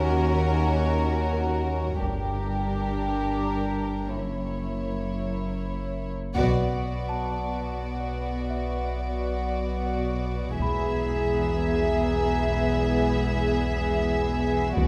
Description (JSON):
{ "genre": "cinematic, suspense film score", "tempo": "85 BPM", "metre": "3/4", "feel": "straight", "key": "B dorian from 6.4 s", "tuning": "A4 = 440 Hz", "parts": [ { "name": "dark studio violin section", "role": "melody", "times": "0.0-14.9 s", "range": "A#4 to E5", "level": "-36 LUFS", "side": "equal", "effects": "none" }, { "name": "warm studio violin section", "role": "second line", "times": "0.0-14.9 s", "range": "E4 to G#4", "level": "-32 LUFS", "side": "equal", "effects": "none" }, { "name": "dark studio viola section", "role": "accompaniment", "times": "0.0-14.9 s", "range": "A#3 to D4", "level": "-35 LUFS", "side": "equal", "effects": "none" }, { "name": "rich studio double bass section", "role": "bass", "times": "0.0-14.9 s", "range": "E1 to D#2", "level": "-35 LUFS", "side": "equal", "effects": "none" }, { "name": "warm studio cello section", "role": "bass", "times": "0.0-14.9 s", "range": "D#2 to B2", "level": "-35 LUFS", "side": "equal", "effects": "none" }, { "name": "pure sine sub bass", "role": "drone", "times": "0.0-14.9 s", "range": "F#1 to D#2", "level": "-33 LUFS", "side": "equal", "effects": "none" }, { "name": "small celesta", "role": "texture", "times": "0.0-14.9 s", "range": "C#4 to B5", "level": "-41 LUFS", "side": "equal", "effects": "none" }, { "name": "warm studio violin section", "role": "texture", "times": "0.0-1.6, 10.6-14.4 s", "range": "G#5 to E#6", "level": "-45 LUFS", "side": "equal", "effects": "none" }, { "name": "taiko ensemble", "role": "drums", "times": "2.0-14.9 s", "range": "none", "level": "-32 LUFS", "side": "equal", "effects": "none" } ], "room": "moderate concert hall reverb, RT60 1.9 s", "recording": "none", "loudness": "-26 LUFS", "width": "mono", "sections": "0.0-6.4 A section; 6.4-14.9 B section", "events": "band accent 6.4-7.1", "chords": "0.0 D#m7; 2.0 Gm; 4.2 F#7; 6.4 Bm; 10.6 E", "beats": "0.62 1.32 | 2.02 2.72 3.43 | 4.16 4.90 5.63 | 6.36 7.07 7.78 | 8.48 9.19 9.89 | 10.59 11.29 11.99 | 12.68 13.38 14.07 | 14.77" }